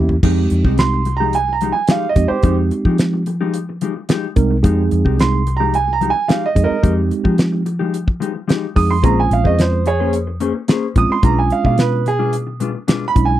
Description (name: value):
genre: straight-eighth soul blues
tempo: 109 BPM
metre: 4/4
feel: straight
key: F minor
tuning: A4 = 435 Hz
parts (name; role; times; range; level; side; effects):
- clear upright piano; second line; 0.0-13.4 s; G4 to Eb6; -18 LUFS; right 6 dB; none
- mellow tine electric piano; accompaniment; 0.0-13.4 s; Ab3 to Bb4; -20 LUFS; right 4 dB; slow stereo tremolo
- vintage muted fingered electric bass; bass; 0.0-13.4 s; Bb1 to F3; -18 LUFS; left 1 dB; none
- mellow electric guitar; stabs; 0.1-13.3 s; B2 to C5; -23 LUFS; left 7 dB; none
- damped 70s drum kit; drums; 0.1-13.3 s; crash cymbal, hi-hat, kick drum, snare drum, toms; -16 LUFS; equal; none
room: little or no reverb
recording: dry, close 1970s-style studio recording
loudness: -14 LUFS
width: side -13 dB against mid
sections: 0.2-13.4 A section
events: drum fill 0.0; upright piano solo 0.2-13.4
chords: 0.2 Fm9; 9.0 Bbm9; 11.2 Bdim7